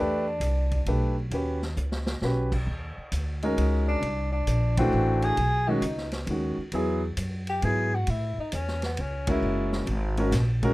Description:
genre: jazz, small-group swing and bop.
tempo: 133 BPM.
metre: 3/4.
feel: swing 67% on 8ths.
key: G# minor.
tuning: A4 = 441 Hz.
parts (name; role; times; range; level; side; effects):
dark tenor saxophone; melody; 0.0-0.9, 3.4-9.9 s; B3 to G#4; -30 LUFS; left 1 dB; none.
clear grand piano; accompaniment; 0.0-10.7 s; D#3 to B4; -27 LUFS; equal; none.
upright bass; bass; 0.0-10.7 s; F#1 to A2; -27 LUFS; equal; none.
vintage drum kit; drums; 0.4-10.7 s; crash cymbal, hi-hat, kick drum, ride cymbal, snare drum; -36 LUFS; equal; none.
room: little or no reverb.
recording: rough home demo mix.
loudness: -24 LUFS.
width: side -18 dB against mid.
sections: 0.0-2.7 A section; 2.7-10.7 B section.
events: drum fill 1.8-2.2; band accent 4.7, 9.2.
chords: 0.0 Em7; 1.3 D#7alt; 2.7 G#sus2; 4.0 C9; 5.4 B6; 6.7 E; 8.1 A; 9.4 F#9.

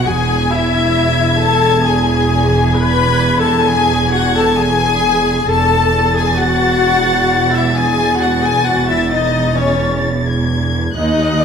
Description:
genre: classical, slow romantic movement for string orchestra.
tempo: 44 BPM (dotted quarters).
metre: 12/8.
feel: rubato.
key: unclear.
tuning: A4 = 442 Hz.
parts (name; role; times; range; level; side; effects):
rich chamber violin section; melody; 0.0-11.4 s; F#6 to A6; -20 LUFS; left 2 dB; none.
rich chamber violin section; second line; 0.0-11.4 s; C#5 to B5; -17 LUFS; left 6 dB; none.
rich chamber viola section; accompaniment; 0.0-11.4 s; C#4 to B4; -18 LUFS; left 1 dB; none.
rich chamber cello section; bass; 0.0-11.4 s; D#2 to E2; -18 LUFS; right 3 dB; none.
rich symphonic double bass section; bass; 0.0-11.4 s; E1 to D#2; -19 LUFS; right 3 dB; none.
room: wet scoring stage reverb, RT60 1.6 s.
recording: none.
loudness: -12 LUFS.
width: side -7 dB against mid.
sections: 0.0-11.4 A section.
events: none.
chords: 0.1 E; 5.5 F#m7/E.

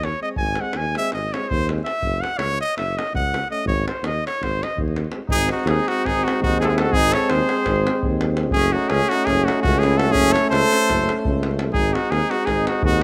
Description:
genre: balkan folk, Balkan brass band.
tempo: 333 BPM (eighths).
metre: 9/8.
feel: straight.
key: G# phrygian dominant.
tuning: A4 = 437 Hz.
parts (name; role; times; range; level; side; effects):
bright trumpet; melody; 0.0-13.0 s; F#4 to G#5; -24 LUFS; equal; none.
mellow tuba; bass; 0.0-13.0 s; F#1 to D#2; -26 LUFS; equal; none.
davul; percussion; 0.0-12.9 s; none; -29 LUFS; equal; none.
dark trombone; accompaniment; 0.2-13.0 s; B#3 to C#4; -29 LUFS; equal; none.
warm euphonium; accompaniment; 0.2-13.0 s; G#3 to A3; -30 LUFS; equal; none.
mellow trumpet; second line; 5.3-13.0 s; C#4 to A4; -30 LUFS; equal; none.
room: light reverb, small room ambience.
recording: rough home demo mix.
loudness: -20 LUFS.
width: mono.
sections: 0.0-5.3 A section; 5.3-13.0 B section.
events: speeding up 0.0-13.0; trumpet solo 0.0-5.3.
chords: 0.0 G#; 2.0 F#5; 3.7 G#; 8.5 F#m; 11.7 G#.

